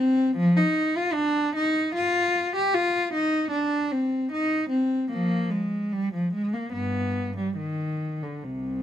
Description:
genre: classical, baroque-style suite movement for unaccompanied cello.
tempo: 75 BPM.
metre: 4/4.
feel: rubato.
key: C minor.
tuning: A4 = 440 Hz.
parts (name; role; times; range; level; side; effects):
rich cello; solo; 0.0-8.8 s; C2 to G4; -23 LUFS; equal; none.
room: light reverb.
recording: close, detailed microphones.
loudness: -23 LUFS.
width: side -10 dB against mid.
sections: 0.0-8.8 A section.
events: none.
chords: none.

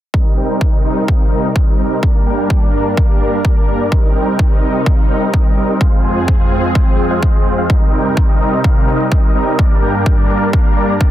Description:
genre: EDM, festival progressive house.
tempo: 127 BPM.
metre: 4/4.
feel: straight.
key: C minor.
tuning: A4 = 442 Hz.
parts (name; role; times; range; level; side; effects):
lush unison pad; sustained chords; 0.1-11.1 s; F2 to Bb4; -20 LUFS; equal; chorus, phaser, sidechain pumping.
supersaw chords; riff; 0.1-11.1 s; G3 to Ab5; -17 LUFS; right 1 dB; sidechain pumping, low-pass filter, dub echo.
electronic kick drum; drums; 0.1-11.1 s; none; -12 LUFS; equal; overdrive.
room: little or no reverb.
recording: dense, heavily limited modern master.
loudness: -11 LUFS.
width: side -12 dB against mid.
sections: 0.1-11.1 A section.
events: none.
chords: 0.1 Cm7; 2.0 Gm; 3.9 Cm7; 5.8 Fm; 7.7 Cm7; 9.6 Gm.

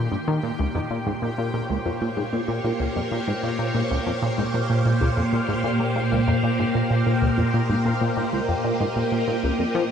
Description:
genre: ambient, sequencer-driven space music.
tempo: 95 BPM.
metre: 4/4.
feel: straight.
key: Bb dorian.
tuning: A4 = 439 Hz.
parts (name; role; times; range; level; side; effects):
phased string machine; sustained chords; 0.0-9.9 s; Bb2 to C6; -24 LUFS; equal; ensemble chorus, phaser, shimmer reverb.
tight sequenced synth; riff; 0.0-9.8 s; Db2 to F3; -24 LUFS; equal; chorus, phaser, tape echo, shimmer reverb.
bubbling stepped-filter texture; texture; 0.0-9.9 s; G4 to G5; -32 LUFS; left 1 dB; chorus, built-in reverb, shimmer reverb.
room: wet huge ambient reverb, RT60 8.8 s.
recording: none.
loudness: -21 LUFS.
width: side -8 dB against mid.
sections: 0.0-9.9 A section.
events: none.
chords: 0.0 Eb; 0.6 Bbmadd9.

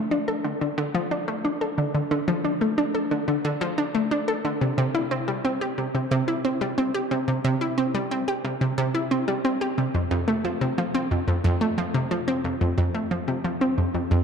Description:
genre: ambient.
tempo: 90 BPM.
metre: 4/4.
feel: straight.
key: unclear.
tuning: A4 = 440 Hz.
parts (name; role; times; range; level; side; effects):
analog pluck; solo; 0.0-14.2 s; F2 to A4; -22 LUFS; equal; chorus, tape echo.
room: wet plate reverb, RT60 3.4 s.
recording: dark, warm production.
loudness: -22 LUFS.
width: side -6 dB against mid.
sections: 0.0-14.2 A section.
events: none.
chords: none.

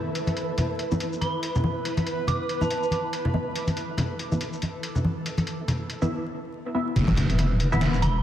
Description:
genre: deep dubstep.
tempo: 141 BPM.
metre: 4/4.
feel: swing 57% on 16ths, half-time.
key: unclear.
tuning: A4 = 439 Hz.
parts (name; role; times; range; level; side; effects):
granular cloud pad; sustained chords; 0.0-8.2 s; E4 to B4; -33 LUFS; right 2 dB; built-in reverb.
filtered dub chord stab; stabs; 0.0-7.8 s; B3 to E5; -32 LUFS; equal; phaser, lush chorus, cassette tape, dub echo.
flickering grainy texture; texture; 0.0-8.2 s; B4; -37 LUFS; equal; built-in reverb.
trip hop sampler-style drum kit; drums; 0.2-8.1 s; crash cymbal, hi-hat, shaker, snare drum; -34 LUFS; left 1 dB; studio reverb.
congas; percussion; 0.3-8.1 s; none; -27 LUFS; left 1 dB; none.
dark detuned synth bell; melody; 1.2-3.0, 8.0-8.2 s; A5 to D6; -35 LUFS; right 3 dB; chorus, phaser, dub echo.
deep soft wobble bass; bass; 7.0-8.2 s; E1; -23 LUFS; equal; chorus.
electronic kick drum; drums; 7.0-7.1 s; none; -27 LUFS; equal; studio reverb.
impact; sound effects; 7.0-8.2 s; none; -29 LUFS; equal; none.
room: wet lush hall reverb, RT60 1.9 s, digital ambience.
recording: dreamy mix soaked in reverb, vinyl crackle.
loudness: -24 LUFS.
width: side -11 dB against mid.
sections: 0.0-7.0 A section; 7.0-8.2 B section.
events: filter sweep on synth stab 0.0-7.0; break 6.1-7.0; drop 7.0-8.2; impact 7.0-8.2.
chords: 0.0 E5.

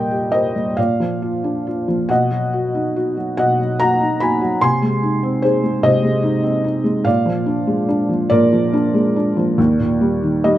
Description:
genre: classical, lyrical solo piano.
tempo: 48 BPM (dotted quarters).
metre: 6/8.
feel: uneven beats, rubato.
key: unclear.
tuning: A4 = 439 Hz.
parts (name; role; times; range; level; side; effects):
felt-muted upright piano; solo; 0.0-10.6 s; Eb2 to C6; -15 LUFS; equal; none.
room: moderate recital hall reverb, RT60 1.5 s.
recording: close, detailed microphones.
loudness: -15 LUFS.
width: side -13 dB against mid.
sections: 0.0-10.6 A section.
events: none.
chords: 0.0 Eb/Bb; 0.8 Bb; 2.1 B; 4.6 Ab/C; 7.1 Bb7; 9.6 Eb.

